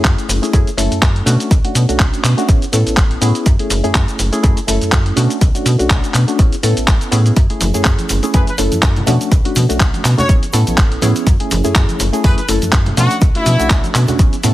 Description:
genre	filtered disco house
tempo	123 BPM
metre	4/4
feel	swing 56% on 16ths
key	F# minor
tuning	A4 = 440 Hz
part	barky reed electric piano	accompaniment	0.0-14.5 s	A3 to A4	-19 LUFS	equal	fast tremolo, phaser, sidechain pumping
part	slap-like FM bass	bass	0.0-14.5 s	F#1 to B2	-16 LUFS	equal	sidechain pumping
part	dusty soul sampler-style drum kit	drums	0.0-14.5 s	handclaps, hi-hat, shaker	-19 LUFS	equal	sidechain pumping on hats, sidechain pumping on perc
part	electronic kick drum	drums	0.0-14.3 s	none	-13 LUFS	equal	none
part	tube shaker and congas	percussion	7.4-14.5 s	none	-24 LUFS	right 1 dB	sidechain pumping on perc
part	brilliant trumpet section	melody	8.3-13.8 s	E4 to C#5	-21 LUFS	left 1 dB	sidechain pumping, tape echo
room	digital ambience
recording	heavily compressed radio sound, multiband compression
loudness	-11 LUFS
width	side -15 dB against mid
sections	0.0-14.5 A section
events	none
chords	0.0 F#m7; 1.3 Bm7; 2.5 Amaj7; 3.5 F#m7; 5.2 Bm7; 6.4 Amaj7; 7.4 F#m7; 9.1 Bm7; 10.3 Amaj7; 11.3 F#m7; 13.0 Bm7

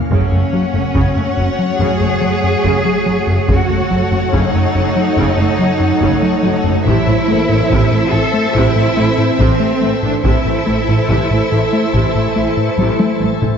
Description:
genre	cinematic, hybrid orchestral and electronic film score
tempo	71 BPM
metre	4/4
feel	straight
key	unclear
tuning	A4 = 440 Hz
part	rich symphonic viola section	accompaniment	0.0-13.5 s	C3 to A4	-23 LUFS	right 2 dB	none
part	organ-like drone	sustained chords	0.0-13.6 s	E3 to C#5	-20 LUFS	equal	ensemble chorus, built-in reverb
part	rubbery square bass	riff	0.0-13.5 s	F#2 to A3	-17 LUFS	left 2 dB	none
part	felt-muted upright piano	texture	0.0-0.1, 7.3-13.6 s	Bb3 to A4	-28 LUFS	left 4 dB	none
part	rich chamber violin section	second line	0.1-13.4 s	C5 to F#5	-22 LUFS	left 5 dB	none
part	clear symphonic cello section	bass	0.1-13.2 s	C4 to A4	-19 LUFS	right 3 dB	none
part	rich studio double bass section	bass	0.1-13.5 s	F#1 to A1	-21 LUFS	right 4 dB	none
part	taiko ensemble	drums	0.1-13.6 s	none	-22 LUFS	equal	none
room	moderate scoring stage reverb, RT60 2.0 s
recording	dark, warm production, nothing above 7.6 kHz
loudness	-12 LUFS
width	side -7 dB against mid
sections	0.0-13.6 A section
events	drum fill 12.8-13.6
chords	0.1 F#m; 6.9 Am

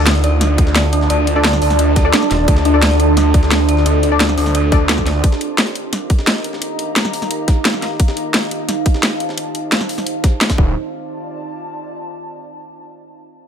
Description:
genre	dark technical drum and bass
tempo	174 BPM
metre	4/4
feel	straight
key	D phrygian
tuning	A4 = 441 Hz
part	deep dark ambient pad	sustained chords	0.0-10.7 s	D4 to F5	-22 LUFS	right 2 dB	chorus, built-in reverb, sidechain pumping
part	filtered dub chord stab	stabs	0.0-4.8 s	D4 to D5	-23 LUFS	left 5 dB	chorus, dub echo
part	snarling distorted saw bass	bass	0.0-5.2, 10.6-10.7 s	D1 to D2	-15 LUFS	equal	distortion, overdrive
part	airy breathy pad	texture	0.0-12.1 s	F4 to Bb5	-26 LUFS	equal	chorus, sidechain pumping
part	dark detuned synth bell	arpeggios	0.1-5.2 s	D4 to D5	-21 LUFS	right 1 dB	chorus, phaser, sidechain pumping, dub echo
part	breakbeat sampler-style drum kit	drums	0.1-10.6 s	hi-hat, snare drum	-26 LUFS	equal	high-pass filter on hats, high-pass filter on snare, high-pass filter on room
part	drum and bass drum kit	drums	0.1-10.6 s	hi-hat, snare drum	-17 LUFS	equal	overdrive
part	electronic kick drum	drums	0.6-10.7 s	none	-14 LUFS	equal	overdrive
room	light reverb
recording	none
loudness	-13 LUFS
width	side -8 dB against mid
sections	0.0-10.8 A section; 10.8-12.1 B section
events	fade-out on analog synth pad 0.0-10.8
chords	0.0 Dm; 5.2 Eb; 10.6 Dm

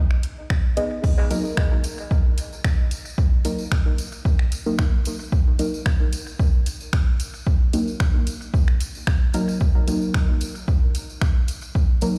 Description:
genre	dub techno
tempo	112 BPM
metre	4/4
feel	straight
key	Eb minor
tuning	A4 = 441 Hz
part	punchy analog drum machine	drums	0.1-12.1 s	crash cymbal, finger snaps, hi-hat	-35 LUFS	equal	overdrive, dub echo
part	electronic kick drum	drums	0.5-11.9 s	none	-22 LUFS	equal	overdrive
part	deep mellow chord stab	stabs	0.8-12.2 s	Gb3 to Eb5	-30 LUFS	equal	chorus, phaser, sidechain pumping, dub echo
part	tambourine	percussion	1.0-12.2 s	none	-41 LUFS	equal	none
room	little or no reverb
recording	played on a big sound system in a bare room, stone room reverb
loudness	-22 LUFS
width	mono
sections	0.0-1.0 A section; 1.0-12.2 A section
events	filter sweep on synth stab 1.0-12.2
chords	0.0 Abm; 1.0 Ebm

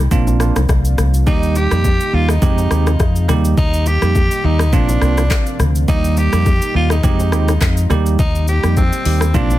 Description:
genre	afrobeats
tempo	104 BPM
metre	4/4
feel	swing 55% on 16ths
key	Eb major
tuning	A4 = 440 Hz
part	bell-like tine electric piano	accompaniment	0.0-9.6 s	G3 to G4	-20 LUFS	right 8 dB	none
part	lush unison pad	sustained chords	0.0-9.6 s	Bb2 to G4	-27 LUFS	right 1 dB	chorus
part	fingered electric bass with an envelope filter	bass	0.0-9.6 s	Bb1 to F2	-15 LUFS	equal	none
part	afro-pop drum kit	drums	0.1-9.6 s	handclaps, hi-hat, kick drum, rim click, shaker	-18 LUFS	left 1 dB	soft clipping on snare
part	congas and bongos	percussion	0.1-9.6 s	none	-25 LUFS	left 3 dB	none
part	raspy tenor saxophone	melody	1.3-9.6 s	C4 to G4	-22 LUFS	equal	ping-pong delay
room	light reverb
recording	dense, heavily limited modern master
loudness	-12 LUFS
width	side -15 dB against mid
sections	0.0-1.3 A section; 1.3-9.6 B section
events	none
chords	0.1 Bbadd9; 1.3 Eb; 2.4 Fm7; 3.3 Eb; 4.7 Bbadd9; 5.9 Eb; 7.0 Fm7; 7.9 Eb

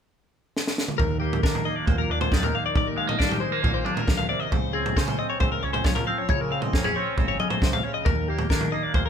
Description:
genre	math rock and midwest emo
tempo	136 BPM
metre	4/4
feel	straight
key	unclear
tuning	A4 = 440 Hz
part	compact cocktail drum kit	drums	0.6-9.0 s	kick drum, snare drum, toms	-25 LUFS	equal	none
part	twangy electric guitar	accompaniment	1.0-9.1 s	Eb2 to D4	-29 LUFS	right 5 dB	phaser
part	twelve-string electric guitar	arpeggios	1.0-9.1 s	G4 to F5	-28 LUFS	left 8 dB	none
part	growling fingered electric bass	bass	1.0-9.1 s	Ab1 to Eb3	-31 LUFS	equal	overdrive
room	moderate large studio reverb, RT60 1.2 s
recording	band playing live in one room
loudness	-22 LUFS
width	side -8 dB against mid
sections	1.0-9.1 A section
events	drum fill 0.5-1.0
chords	0.0 N.C.; 1.0 Ebmaj7; 4.5 Dbmaj9; 8.1 Ebmaj7

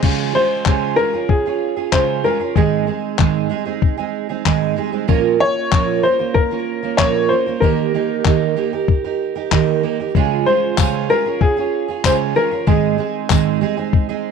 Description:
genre	acoustic pop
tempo	95 BPM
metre	4/4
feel	straight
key	unclear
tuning	A4 = 440 Hz
part	fingerpicked twelve-string acoustic guitar	accompaniment	0.0-14.3 s	Ab2 to Bb4	-18 LUFS	right 11 dB	none
part	dusty soul sampler-style drum kit	drums	0.0-14.1 s	crash cymbal, handclaps, kick drum	-17 LUFS	left 5 dB	none
part	clear upright piano	melody	0.3-13.3 s	Ab4 to Db5	-18 LUFS	left 3 dB	none
part	tambourine	percussion	10.8-13.4 s	none	-29 LUFS	left 19 dB	none
room	light reverb, small room reverb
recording	1960s-style stereo with parts hard left and right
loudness	-15 LUFS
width	side -6 dB against mid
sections	0.0-14.3 A section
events	none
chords	0.0 Db; 2.6 Ab; 5.1 Bbm; 7.6 Eb; 10.1 Db; 12.7 Ab

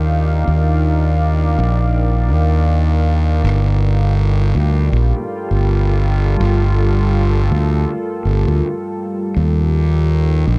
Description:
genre	ambient dub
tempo	81 BPM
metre	4/4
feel	swing 59% on 16ths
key	G minor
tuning	A4 = 440 Hz
part	deep dark ambient pad	sustained chords	0.0-10.6 s	G3 to G5	-24 LUFS	equal	chorus, built-in reverb
part	fuzz fingered electric bass	bass	0.0-10.6 s	G1 to Eb2	-16 LUFS	equal	overdrive
room	light reverb, digital ambience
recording	none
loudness	-16 LUFS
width	mono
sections	0.0-10.6 A section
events	none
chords	0.0 Ebmaj7; 3.4 Gm7; 9.4 Ebmaj7

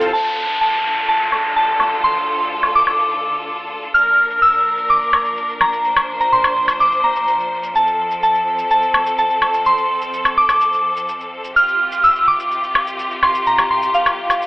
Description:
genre	EDM, festival progressive house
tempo	126 BPM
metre	4/4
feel	straight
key	unclear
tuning	A4 = 440 Hz
part	electronic hi-hat, shaker and woodblock	drums	0.0-14.5 s	none	-18 LUFS	equal	overdrive, low-pass filter on hats, low-pass filter on perc, low-pass filter on cymbals, low-pass filter on snare, low-pass filter on room
part	soft synth bell	melody	0.1-14.4 s	F5 to F6	-15 LUFS	equal	chorus, digital delay
part	bright studio string section	sustained chords	0.1-14.5 s	C2 to C5	-25 LUFS	left 1 dB	none
part	downlifter and reverse cymbal	sound effects	0.1-3.9, 14.4-14.5 s	none	-24 LUFS	equal	none
room	wet digital room reverb, RT60 1.1 s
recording	telephone sound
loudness	-14 LUFS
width	side -21 dB against mid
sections	0.1-14.5 A section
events	filter sweep on drum 0.1-14.5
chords	0.1 Dm; 3.9 Bb; 7.8 F; 11.6 Csus4

